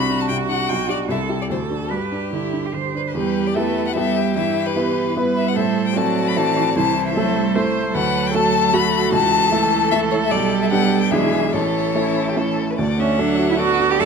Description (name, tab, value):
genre	quick classical-period movement for piano quintet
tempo	150 BPM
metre	3/4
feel	straight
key	G major, E minor from 3.2 s, D major from 7.9 s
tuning	A4 = 441 Hz
part	rich violin	melody	0.0-14.1 s	G4 to B5	-22 LUFS	left 11 dB	none
part	clear cello	second line	0.0-14.1 s	E3 to C5	-23 LUFS	right 9 dB	none
part	clear baby grand piano	accompaniment	0.0-14.1 s	A1 to B4	-22 LUFS	equal	none
part	rich violin	second line	3.2-14.1 s	E4 to E5	-28 LUFS	left 5 dB	none
part	clear viola	accompaniment	3.2-14.1 s	F#3 to C5	-25 LUFS	right 4 dB	none
room	light reverb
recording	close, detailed microphones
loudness	-17 LUFS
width	side -6 dB against mid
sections	0.0-3.2 A section; 3.2-12.8 B section; 12.8-14.1 C section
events	none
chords	0.0 D7/C; 0.7 G/B; 1.1 Am7/C; 1.5 D; 1.9 G; 3.2 Em; 4.4 Em/G; 5.6 Am; 6.8 Am/C; 7.9 D; 9.1 A/C#; 10.3 G/B; 11.1 E7/B; 11.5 A; 12.8 D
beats	0.30 | 0.70 1.10 1.51 | 1.92 2.33 2.75 | 3.16 3.56 3.96 | 4.37 4.77 5.17 | 5.57 5.97 6.37 | 6.76 7.16 7.55 | 7.95 8.34 8.74 | 9.13 9.52 9.92 | 10.32 10.72 11.12 | 11.54 11.96 12.38 | 12.79 13.20 13.60 | 13.99